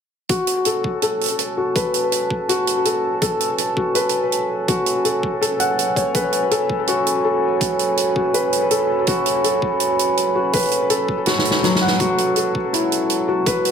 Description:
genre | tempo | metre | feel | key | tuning
half-time drum and bass | 164 BPM | 4/4 | half-time | F# minor | A4 = 439 Hz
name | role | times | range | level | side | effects
dark analog pad | sustained chords | 0.3-13.7 s | F#4 to B5 | -22 LUFS | right 2 dB | chorus, sidechain pumping
felt-muted upright piano | arpeggios | 0.3-13.7 s | F#3 to F#5 | -20 LUFS | left 2 dB | low-pass filter, ping-pong delay
electronic kick drum | drums | 0.3-13.5 s | none | -24 LUFS | equal | overdrive, high-pass filter on kick
natural country drum kit | drums | 0.3-13.7 s | hi-hat, snare drum | -23 LUFS | right 5 dB | none
room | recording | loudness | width
moderate digital room reverb, RT60 1.3 s, small room ambience | none | -17 LUFS | side -7 dB against mid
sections
0.3-13.7 A section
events
filter sweep on felt piano 0.3-13.7; drum fill 11.3-12.0; kick drops out 11.6-12.0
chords
0.3 F#m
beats
| 0.29 0.66 1.02 1.39 | 1.76 2.12 2.49 2.85 | 3.22 3.59 3.95 4.32 | 4.68 5.05 5.42 5.78 | 6.15 6.51 6.88 7.25 | 7.61 7.98 8.34 8.71 | 9.07 9.44 9.81 10.17 | 10.54 10.90 11.27 11.63 | 12.00 12.37 12.73 13.10 | 13.46

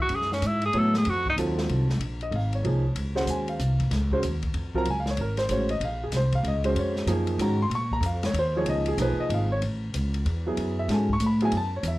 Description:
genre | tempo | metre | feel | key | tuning
modal jazz | 189 BPM | 3/4 | swing 63% on 8ths | Bb minor | A4 = 440 Hz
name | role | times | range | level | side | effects
clear tenor saxophone | melody | 0.0-1.4 s | C#4 to A4 | -26 LUFS | equal | plate reverb
upright bass | bass | 0.0-12.0 s | Ab1 to Bb2 | -26 LUFS | equal | none
open jazz drum kit | drums | 0.1-11.9 s | hi-hat, kick drum, ride cymbal, snare drum | -34 LUFS | left 2 dB | none
warm concert grand piano | accompaniment | 0.7-12.0 s | Eb3 to Db6 | -28 LUFS | right 1 dB | none
room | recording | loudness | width
light reverb | worn, warbling old tape, cassette tape, warbly pitch drift | -23 LUFS | side -18 dB against mid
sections
0.0-2.0 A section; 2.0-9.6 A section; 9.6-12.0 A section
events
tenor saxophone solo 0.0-2.0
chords
0.0 F#m11; 1.1 F7b9; 2.0 Bbm11; 8.7 Db7; 9.6 F#m11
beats
| 0.10 0.42 0.74 | 1.05 1.37 1.69 | 2.01 2.32 2.64 | 2.96 3.27 3.59 | 3.91 4.22 4.54 | 4.86 5.18 5.49 | 5.81 6.13 6.45 | 6.76 7.08 7.40 | 7.71 8.03 8.35 | 8.66 8.98 9.30 | 9.62 9.94 10.25 | 10.57 10.89 11.21 | 11.52 11.84

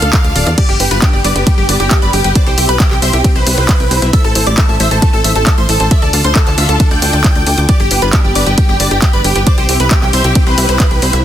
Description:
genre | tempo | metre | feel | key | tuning
uplifting trance | 135 BPM | 4/4 | straight | unclear | A4 = 439 Hz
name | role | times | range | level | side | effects
big supersaw lead | melody | 0.0-11.2 s | G4 to G5 | -18 LUFS | right 1 dB | phaser, sidechain pumping, digital delay
plucky unison lead | second line | 0.0-11.2 s | G5 to G6 | -22 LUFS | right 1 dB | phaser, sidechain pumping, digital delay
dark studio string section | sustained chords | 0.0-11.2 s | C3 to A4 | -21 LUFS | left 1 dB | sidechain pumping
wide unison pluck | arpeggios | 0.0-11.2 s | G3 to D6 | -22 LUFS | left 2 dB | sidechain pumping, digital delay
tight sequencer bass | bass | 0.0-11.2 s | D1 to E2 | -15 LUFS | equal | sidechain pumping
punchy analog drum machine | drums | 0.0-11.2 s | crash cymbal, handclaps, hi-hat, ride cymbal | -18 LUFS | equal | none
electronic kick drum | drums | 0.1-10.9 s | none | -11 LUFS | equal | overdrive
room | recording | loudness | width
little or no reverb | dense, heavily limited modern master | -9 LUFS | side -11 dB against mid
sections
0.0-11.2 A section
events
none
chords
0.0 Dm; 0.6 G; 2.4 C; 4.1 Am; 5.9 Dm; 7.7 G; 9.5 C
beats
0.13 | 0.58 1.02 1.47 1.91 | 2.36 2.80 3.24 3.69 | 4.13 4.58 5.02 5.47 | 5.91 6.36 6.80 7.24 | 7.69 8.13 8.58 9.02 | 9.47 9.91 10.36 10.80 | 11.24

